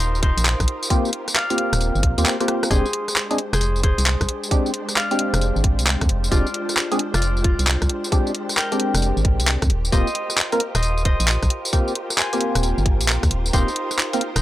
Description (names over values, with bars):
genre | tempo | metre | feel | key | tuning
UK garage, two-step garage | 133 BPM | 4/4 | swing 66% on 16ths | F dorian | A4 = 438 Hz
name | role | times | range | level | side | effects
concert harp | melody | 0.0-14.4 s | Eb4 to Ab5 | -27 LUFS | equal | tape echo
soft string machine | sustained chords | 0.0-14.4 s | Ab3 to C5 | -32 LUFS | equal | ensemble chorus, sidechain pumping
organ-like FM bass | bass | 0.0-14.4 s | Eb1 to F2 | -21 LUFS | equal | none
garage drum kit | drums | 0.0-14.4 s | handclaps, hi-hat, rim click, tambourine | -22 LUFS | equal | none
electronic kick drum | drums | 0.2-13.7 s | none | -20 LUFS | equal | none
percussive organ stab | stabs | 0.9-14.2 s | Ab3 to Bb4 | -24 LUFS | equal | analog chorus, vintage 12-bit sampler grit, tape echo
room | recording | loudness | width
light reverb | dry, gritty hardware recording, transformer saturation | -18 LUFS | side -14 dB against mid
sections
0.0-14.4 A section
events
drum fill 2.4-2.7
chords
0.0 Eb69; 2.7 Fm69; 9.7 Eb69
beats
0.00 0.45 | 0.90 1.35 1.80 2.26 | 2.71 3.16 3.61 4.06 | 4.51 4.96 5.41 5.87 | 6.32 6.77 7.22 7.67 | 8.12 8.57 9.02 9.47 | 9.93 10.38 10.83 11.28 | 11.73 12.18 12.63 13.08 | 13.53 13.98